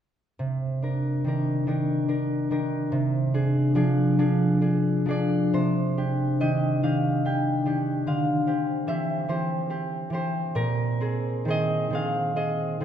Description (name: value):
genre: classical, solo harp piece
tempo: 47 BPM (dotted quarters)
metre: 6/8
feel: uneven beats, rubato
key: C minor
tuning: A4 = 444 Hz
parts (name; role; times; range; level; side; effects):
- concert harp; solo; 0.4-12.8 s; Bb2 to G5; -23 LUFS; equal; none
room: moderate concert hall reverb, RT60 2.3 s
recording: none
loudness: -23 LUFS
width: side -9 dB against mid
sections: 0.4-5.5 A section; 5.5-12.8 B section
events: none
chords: 0.4 Cm9; 2.9 Fm6/C; 5.5 Cmadd9; 8.1 Dm11; 10.6 Bb9sus4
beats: | 0.39 1.68 | 2.92 4.19 | 5.54 6.84 | 8.08 9.29 | 10.57 11.92